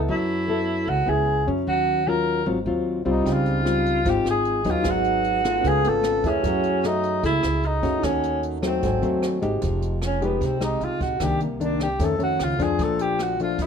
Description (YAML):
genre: bossa nova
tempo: 151 BPM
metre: 4/4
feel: straight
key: unclear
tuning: A4 = 440 Hz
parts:
  - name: nylon-string guitar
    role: accompaniment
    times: 0.0-13.7 s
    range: F2 to A4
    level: -25 LUFS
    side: left 3 dB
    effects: none
  - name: upright bass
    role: bass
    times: 0.0-13.7 s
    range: F1 to F#2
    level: -28 LUFS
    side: right 1 dB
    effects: none
  - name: breathy alto saxophone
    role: melody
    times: 0.1-13.7 s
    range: Bb3 to A#4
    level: -24 LUFS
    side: right 1 dB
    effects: plate reverb
  - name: warm concert grand piano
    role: accompaniment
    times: 3.2-9.6 s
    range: C#4 to G#5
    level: -30 LUFS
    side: right 4 dB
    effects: none
  - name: jazz brush drum kit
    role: drums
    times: 3.3-13.7 s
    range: hi-hat, kick drum, rim click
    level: -32 LUFS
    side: right 1 dB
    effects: none
room: light reverb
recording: faint mains hum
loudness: -20 LUFS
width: side -7 dB against mid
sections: 0.0-9.6 A section; 9.6-13.7 B section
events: alto saxophone solo 9.6-13.7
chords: 0.1 F#m11; 1.7 D#m9; 2.5 G#6; 3.3 C#maj9#11; 4.8 G#m7; 5.6 C#7b13; 6.4 F#m9; 8.0 D#m7b5; 8.8 G#7b9; 9.6 Fm9; 11.2 Cm9; 12.0 Faug7; 12.8 Bbmaj7